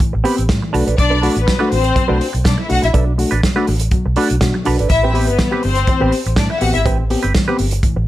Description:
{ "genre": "disco", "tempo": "123 BPM", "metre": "4/4", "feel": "straight", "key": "A dorian", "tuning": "A4 = 438 Hz", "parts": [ { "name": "barky reed electric piano", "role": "accompaniment", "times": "0.0-8.0 s", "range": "A2 to G4", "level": "-21 LUFS", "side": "left 2 dB", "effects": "overdrive" }, { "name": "warm soul drum kit", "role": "drums", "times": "0.0-8.0 s", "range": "hi-hat, kick drum, snare drum", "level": "-18 LUFS", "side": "equal", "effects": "gated reverb" }, { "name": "clean electric guitar", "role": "accompaniment", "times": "0.1-8.0 s", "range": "C4 to B4", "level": "-22 LUFS", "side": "right 6 dB", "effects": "wah" }, { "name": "vintage muted fingered electric bass", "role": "bass", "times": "0.1-8.1 s", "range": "G1 to B2", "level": "-18 LUFS", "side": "equal", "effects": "none" }, { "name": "rich symphonic string section", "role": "second line", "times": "1.0-6.8 s", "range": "B3 to F#5", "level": "-18 LUFS", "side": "left 4 dB", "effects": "none" } ], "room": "light reverb, small room ambience", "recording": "none", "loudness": "-13 LUFS", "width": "side -14 dB against mid", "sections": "0.0-8.1 A section", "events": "none", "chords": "0.0 Am9; 0.7 Bm7; 4.9 Am9" }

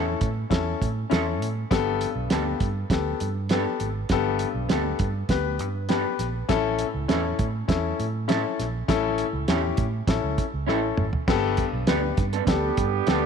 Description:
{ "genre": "uptempo 1960s-style soul", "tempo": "100 BPM", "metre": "4/4", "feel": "straight", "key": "unclear", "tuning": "A4 = 441 Hz", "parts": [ { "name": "warm grand piano", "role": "accompaniment", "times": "0.0-13.3 s", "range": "G2 to B4", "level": "-26 LUFS", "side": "left 10 dB", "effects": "none" }, { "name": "electric guitar through a small old amp", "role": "stabs", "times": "0.0-13.2 s", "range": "B3 to A4", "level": "-31 LUFS", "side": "right 14 dB", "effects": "wide subtle chorus" }, { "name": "vintage muted fingered electric bass", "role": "bass", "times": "0.0-13.3 s", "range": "G1 to A2", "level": "-29 LUFS", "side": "right 2 dB", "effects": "none" }, { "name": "cloth-damped thuddy drum kit", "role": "drums", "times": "0.2-13.2 s", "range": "crash cymbal, hi-hat, kick drum, snare drum, toms", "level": "-26 LUFS", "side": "right 2 dB", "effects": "none" }, { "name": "dark horn section", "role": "second line", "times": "12.5-13.3 s", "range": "D3 to G4", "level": "-26 LUFS", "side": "right 17 dB", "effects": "none" } ], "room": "light reverb", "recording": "1960s-style stereo with parts hard left and right", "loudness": "-22 LUFS", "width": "side -6 dB against mid", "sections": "0.0-11.3 A section; 11.3-13.3 B section", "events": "drum fill 10.7-11.3", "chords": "0.0 A; 1.7 Gadd9; 6.5 A; 11.3 Gadd9" }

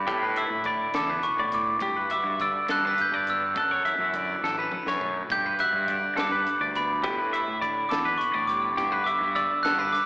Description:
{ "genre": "math rock and midwest emo", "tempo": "69 BPM (dotted quarters)", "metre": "6/8", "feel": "straight", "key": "G lydian", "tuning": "A4 = 440 Hz", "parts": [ { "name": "glockenspiel with hard plastic mallets", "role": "melody", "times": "0.0-10.1 s", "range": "B5 to G6", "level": "-26 LUFS", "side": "right 1 dB", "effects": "none" }, { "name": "twelve-string electric guitar", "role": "accompaniment", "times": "0.0-10.1 s", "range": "E2 to F#4", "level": "-38 LUFS", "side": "right 2 dB", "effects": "lush chorus, slapback echo" }, { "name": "fuzz fingered electric bass", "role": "bass", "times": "0.0-9.9 s", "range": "A1 to A2", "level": "-33 LUFS", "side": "equal", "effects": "overdrive" }, { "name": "twangy electric guitar", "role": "arpeggios", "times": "0.1-10.1 s", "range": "G4 to E5", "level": "-28 LUFS", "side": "left 2 dB", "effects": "slapback echo, tape echo" }, { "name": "compact cocktail drum kit", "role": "drums", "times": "0.1-10.1 s", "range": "hi-hat, kick drum, snare drum, toms", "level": "-36 LUFS", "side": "equal", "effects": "none" } ], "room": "light reverb", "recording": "live gig heard through the venue's PA, recital hall reverb, AM radio sound", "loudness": "-23 LUFS", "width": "side -21 dB against mid", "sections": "0.0-10.1 A section", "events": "drum fill 4.4-5.3", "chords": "0.1 Asus4; 1.8 Gmaj7; 3.6 Dmaj9/F#; 5.3 Gmaj7; 7.1 A9sus4; 8.8 Gmaj7" }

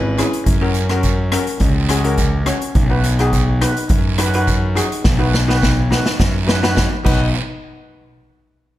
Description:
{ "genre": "calypso", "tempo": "105 BPM", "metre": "4/4", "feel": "straight", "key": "B major", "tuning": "A4 = 439 Hz", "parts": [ { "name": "breathy alto saxophone", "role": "second line", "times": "0.0-0.5, 7.0-7.3 s", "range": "B4 to D#5", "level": "-29 LUFS", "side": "left 4 dB", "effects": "none" }, { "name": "steel pan", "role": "accompaniment", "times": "0.0-7.3 s", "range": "C#4 to C#5", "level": "-21 LUFS", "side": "left 1 dB", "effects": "none" }, { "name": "fuzz fingered electric bass", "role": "bass", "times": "0.0-7.3 s", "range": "G#1 to F#2", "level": "-18 LUFS", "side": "equal", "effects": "overdrive" }, { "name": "street-band drum kit", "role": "drums", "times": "0.2-7.2 s", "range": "crash cymbal, hi-hat, kick drum, rim click, snare drum", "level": "-18 LUFS", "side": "equal", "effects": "none" }, { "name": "guiro", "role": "percussion", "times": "0.2-7.3 s", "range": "none", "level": "-30 LUFS", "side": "right 7 dB", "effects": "none" } ], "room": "light reverb", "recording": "none", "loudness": "-14 LUFS", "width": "side -14 dB against mid", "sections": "0.0-7.3 A section; 7.3-8.8 B section", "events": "drum fill 5.1-7.3", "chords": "0.5 F#; 2.8 B; 7.3 N.C." }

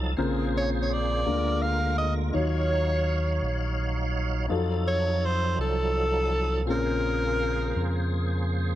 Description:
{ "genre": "gospel", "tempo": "55 BPM (dotted quarters)", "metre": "6/8", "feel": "straight", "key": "Bb minor", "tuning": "A4 = 441 Hz", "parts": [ { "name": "warm concert grand piano", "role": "accompaniment", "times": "0.0-8.8 s", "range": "Bb2 to Db5", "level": "-32 LUFS", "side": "left 3 dB", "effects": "none" }, { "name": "tonewheel organ", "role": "sustained chords", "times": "0.0-8.8 s", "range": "Db3 to A5", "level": "-32 LUFS", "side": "right 3 dB", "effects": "slow rotary speaker, chorus vibrato" }, { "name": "fingered electric bass", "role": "bass", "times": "0.0-8.8 s", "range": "Bb1 to F2", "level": "-28 LUFS", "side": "equal", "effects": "none" }, { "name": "bright alto saxophone", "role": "melody", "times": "0.6-8.1 s", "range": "A4 to F5", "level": "-28 LUFS", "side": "equal", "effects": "none" } ], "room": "light reverb, small room ambience", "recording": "none", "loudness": "-24 LUFS", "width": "side -13 dB against mid", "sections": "0.0-8.8 A section", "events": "tonewheel organ fill 0.0", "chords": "0.2 Bbm9; 1.3 Bb7/D; 2.3 Ebm9; 4.5 F7b9; 6.7 Bbm9" }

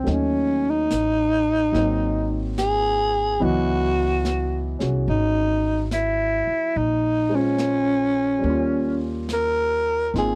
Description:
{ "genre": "jazz ballad", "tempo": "72 BPM", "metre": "4/4", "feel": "swing 67% on 8ths", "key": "unclear", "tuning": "A4 = 440 Hz", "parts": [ { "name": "growling alto saxophone", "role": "melody", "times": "0.0-10.4 s", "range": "C4 to Bb4", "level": "-24 LUFS", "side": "equal", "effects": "none" }, { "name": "warm grand piano", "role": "accompaniment", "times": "0.0-10.4 s", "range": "Fb3 to Eb5", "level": "-30 LUFS", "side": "equal", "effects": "none" }, { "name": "upright bass", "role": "bass", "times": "0.1-10.4 s", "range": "Ab1 to Eb2", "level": "-29 LUFS", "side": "equal", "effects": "none" }, { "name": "jazz brush drum kit", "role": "drums", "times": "0.1-10.4 s", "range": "brushed snare drum, hi-hat, snare drum", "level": "-36 LUFS", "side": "equal", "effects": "none" } ], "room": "light reverb", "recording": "dry, close 1970s-style studio recording", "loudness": "-22 LUFS", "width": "mono", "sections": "0.0-10.4 A section", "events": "none", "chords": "0.1 Ebm7b5; 1.7 Ab7; 3.4 Dbm11; 6.7 Bbm7; 8.4 Eb9" }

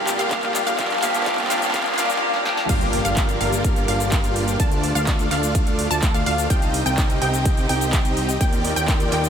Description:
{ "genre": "EDM, festival progressive house", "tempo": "126 BPM", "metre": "4/4", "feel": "straight", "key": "G minor", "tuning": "A4 = 440 Hz", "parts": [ { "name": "semi-hollow electric guitar", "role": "accompaniment", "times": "0.0-2.7 s", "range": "G2 to G4", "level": "-28 LUFS", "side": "equal", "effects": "wide subtle chorus, sidechain pumping, ping-pong delay" }, { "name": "dark studio string section", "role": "sustained chords", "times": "0.0-9.3 s", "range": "C2 to D5", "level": "-28 LUFS", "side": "equal", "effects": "sidechain pumping" }, { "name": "wide unison pluck", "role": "arpeggios", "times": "0.0-9.3 s", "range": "F5 to A5", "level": "-25 LUFS", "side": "equal", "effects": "sidechain pumping, ping-pong delay" }, { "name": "dense compressed supersaw", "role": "riff", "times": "0.0-9.3 s", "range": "A3 to A5", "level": "-26 LUFS", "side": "equal", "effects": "sidechain pumping, ping-pong delay" }, { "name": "riser and impact", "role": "sound effects", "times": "0.0-4.6 s", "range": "none", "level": "-35 LUFS", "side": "equal", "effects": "none" }, { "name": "big-room dance drum kit", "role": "drums", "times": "0.1-9.3 s", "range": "crash cymbal, handclaps, hi-hat, shaker, snare drum", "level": "-26 LUFS", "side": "equal", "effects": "none" }, { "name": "electronic kick drum", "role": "drums", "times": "0.3-9.0 s", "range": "none", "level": "-21 LUFS", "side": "equal", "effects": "none" }, { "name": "fat analog bass", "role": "bass", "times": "2.7-9.3 s", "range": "G1 to Eb2", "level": "-26 LUFS", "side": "equal", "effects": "sidechain pumping" } ], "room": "wet huge ambient reverb, RT60 6.4 s", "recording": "dreamy mix soaked in reverb, high-pass filter", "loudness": "-18 LUFS", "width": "side -8 dB against mid", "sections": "0.0-2.7 A section; 2.7-9.3 B section", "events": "build-up 0.0-2.7; drum fill 0.0-2.2, 2.3-2.7; drop 2.7-9.3; impact 2.7-4.6", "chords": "0.0 Cm; 0.8 Ebmaj7; 2.7 Gm7; 4.6 Dm; 6.5 Cm; 8.4 Ebmaj7" }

